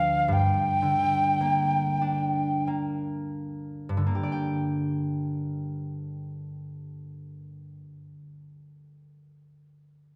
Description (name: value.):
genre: celtic folk, Celtic slow air.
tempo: 41-59 BPM.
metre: 3/4.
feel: rubato.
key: G minor.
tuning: A4 = 440 Hz.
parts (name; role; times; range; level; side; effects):
mellow hollow wooden whistle; melody; 0.0-2.7 s; F5 to G5; -27 LUFS; equal; none.
concert harp; accompaniment; 0.0-8.2 s; D2 to G5; -31 LUFS; equal; none.
room: wet scoring stage reverb, RT60 1.6 s.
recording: none.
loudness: -27 LUFS.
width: mono.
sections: 0.0-4.1 A section; 4.1-8.2 B section.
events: slowing down 0.0-4.1.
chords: 0.3 Gm.